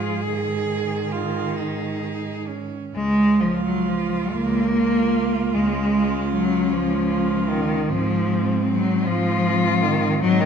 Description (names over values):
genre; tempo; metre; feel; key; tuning
classical, lyrical piece for cello ensemble; 42-53 BPM (dotted quarters); 12/8; rubato; Db major; A4 = 441 Hz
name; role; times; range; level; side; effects
warm cello; melody; 0.0-10.5 s; C4 to Ab4; -27 LUFS; left 7 dB; none
rich cello; second line; 0.0-10.5 s; C4 to Ab4; -29 LUFS; right 8 dB; none
rich cello; accompaniment; 0.0-10.5 s; Eb3 to Bb3; -22 LUFS; left 1 dB; none
rich cello; bass; 0.0-10.5 s; Db2 to Ab2; -25 LUFS; right 4 dB; none
room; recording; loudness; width
wet recital hall reverb, RT60 1.4 s; dark, warm production; -19 LUFS; side -7 dB against mid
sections
0.0-3.0 A section; 3.0-10.5 B section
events
none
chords
0.2 Ab5; 3.0 Db; 7.9 Ab6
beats
0.23 1.58 | 2.95 4.34 5.54 6.71 | 7.88 9.05 10.20